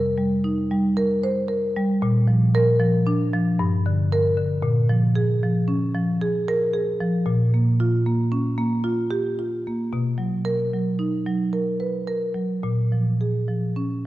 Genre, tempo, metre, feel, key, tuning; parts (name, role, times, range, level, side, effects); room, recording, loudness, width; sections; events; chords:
classical, contemporary piece for solo marimba; 114 BPM; 5/4; rubato; Bb dorian; A4 = 440 Hz
marimba with medium mallets; solo; 0.0-14.1 s; G2 to C5; -20 LUFS; equal
wet concert hall reverb, RT60 2.2 s; dark, warm production; -20 LUFS; side -16 dB against mid
0.0-14.1 A section
0.0 Cm7; 2.0 Bb; 3.6 Gm; 4.6 Bbm7; 7.3 Db/Bb; 9.9 Bmaj7; 12.6 Bbm7